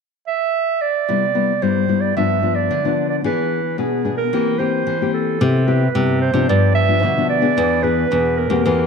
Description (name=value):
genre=samba and choro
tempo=111 BPM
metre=4/4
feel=straight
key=C major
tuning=A4 = 440 Hz
part: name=mellow clarinet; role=melody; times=0.3-8.9 s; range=G#4 to E5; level=-20 LUFS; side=right 8 dB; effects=none
part: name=nylon-string guitar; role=accompaniment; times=1.1-8.9 s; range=G2 to G#4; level=-19 LUFS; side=left 8 dB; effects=none
part: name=nylon-string guitar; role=bass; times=5.4-8.9 s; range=E2 to C3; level=-17 LUFS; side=left 1 dB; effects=none
room=moderate echo chamber reverb, RT60 1.7 s, small room ambience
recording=1960s-style stereo with parts hard left and right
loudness=-16 LUFS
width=side -5 dB against mid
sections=0.0-1.1 A section; 1.1-5.4 B section; 5.4-8.9 C section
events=none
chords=0.0 N.C.; 1.1 Cmaj7; 2.2 G7; 3.2 E7; 4.3 C7/E; 5.4 Cmaj7; 6.5 G7; 7.6 E7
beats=0.01 0.55 | 1.09 1.63 2.17 2.71 | 3.25 3.79 4.33 4.87 | 5.41 5.95 6.49 7.03 | 7.57 8.11 8.65